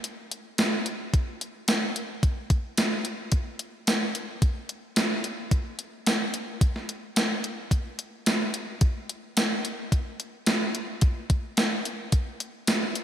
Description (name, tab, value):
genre	rock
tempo	109 BPM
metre	4/4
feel	straight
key	none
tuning	none
part	gated 80s digital drum machine	drums	0.0-13.0 s	hi-hat, kick drum, snare drum, tambourine	-24 LUFS	equal	gated reverb, gated reverb snare, overdrive
room	moderate lush hall reverb, RT60 2.6 s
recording	big arena sound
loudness	-25 LUFS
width	side -10 dB against mid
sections	0.0-13.0 A section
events	none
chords	none